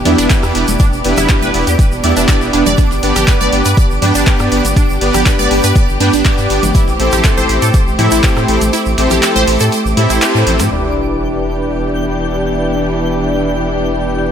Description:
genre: progressive house.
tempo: 121 BPM.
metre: 4/4.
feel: straight.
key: E minor.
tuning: A4 = 438 Hz.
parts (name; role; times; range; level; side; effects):
muted chamber string section; sustained chords; 0.0-14.3 s; E3 to G4; -20 LUFS; equal; sidechain pumping.
saturated sub bass; bass; 0.0-14.3 s; E1 to A2; -18 LUFS; equal; sidechain pumping.
twinkling granular texture; texture; 0.0-14.3 s; D6 to G6; -26 LUFS; right 2 dB; built-in reverb, sidechain pumping.
wide unison pluck; arpeggios; 0.1-10.3 s; D4 to D5; -17 LUFS; right 2 dB; phaser, sidechain pumping, digital delay.
soft supersaw; stabs; 0.1-14.3 s; B3 to G5; -16 LUFS; equal; sidechain pumping, low-pass filter, digital delay.
deep house drum kit; drums; 0.1-10.7 s; handclaps, hi-hat, rim click; -20 LUFS; equal; none.
dusty soul sampler-style drum kit; drums; 0.1-14.3 s; hi-hat, snare drum; -30 LUFS; equal; none.
congas; percussion; 0.1-10.7 s; none; -24 LUFS; left 4 dB; sidechain pumping on perc.
tube shaker; percussion; 0.2-10.7 s; none; -26 LUFS; right 4 dB; none.
electronic kick drum; drums; 0.3-8.3 s; none; -12 LUFS; equal; none.
sub drop; sound effects; 10.7-12.7 s; none; -27 LUFS; equal; none.
room: light reverb.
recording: none.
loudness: -10 LUFS.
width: side -8 dB against mid.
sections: 0.0-10.7 A section; 10.7-14.3 B section.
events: kick drops out 8.7-10.7; band accent 10.2; impact 10.7-12.7.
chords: 0.0 Em7; 2.8 G; 6.7 Am7; 10.7 Em7.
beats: 0.30 | 0.80 1.29 1.79 2.29 | 2.78 3.28 3.77 4.27 | 4.76 5.26 5.76 6.25 | 6.75 7.24 7.74 8.24 | 8.73 9.23 9.72 10.22 | 10.71 11.21 11.71 12.20 | 12.70 13.20 13.69 14.19.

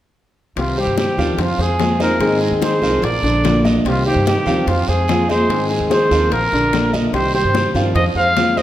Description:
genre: latin, Cuban son and guajira.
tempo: 146 BPM.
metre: 4/4.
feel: straight.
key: C minor.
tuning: A4 = 440 Hz.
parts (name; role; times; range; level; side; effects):
breathy trumpet; melody; 0.6-8.6 s; F4 to F5; -20 LUFS; equal; none.
flamenco guitar; second line; 0.6-8.6 s; C4 to C5; -24 LUFS; right 2 dB; none.
fingerpicked acoustic archtop guitar; accompaniment; 0.6-8.6 s; C3 to Ab4; -22 LUFS; left 2 dB; none.
upright bass; bass; 0.6-8.6 s; Bb1 to Ab2; -22 LUFS; equal; none.
bongos; percussion; 0.6-8.6 s; none; -27 LUFS; left 5 dB; none.
congas; percussion; 0.6-8.6 s; none; -23 LUFS; left 1 dB; none.
guiro; percussion; 0.6-8.6 s; none; -30 LUFS; right 4 dB; none.
clear concert grand piano; arpeggios; 0.8-8.6 s; D3 to Ab5; -22 LUFS; right 1 dB; none.
room: wet recital hall reverb, RT60 1.5 s.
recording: none.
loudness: -14 LUFS.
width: side -13 dB against mid.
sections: 0.6-8.6 A section.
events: none.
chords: 0.6 Cm; 1.4 Fm; 2.2 Ab; 3.0 Bb; 3.9 Cm; 4.7 Fm; 5.5 Ab; 6.3 Bb; 7.1 Cm; 8.0 Fm.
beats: | 0.57 0.98 1.39 1.80 | 2.21 2.62 3.03 3.44 | 3.85 4.26 4.67 5.08 | 5.50 5.91 6.32 6.73 | 7.14 7.55 7.96 8.37.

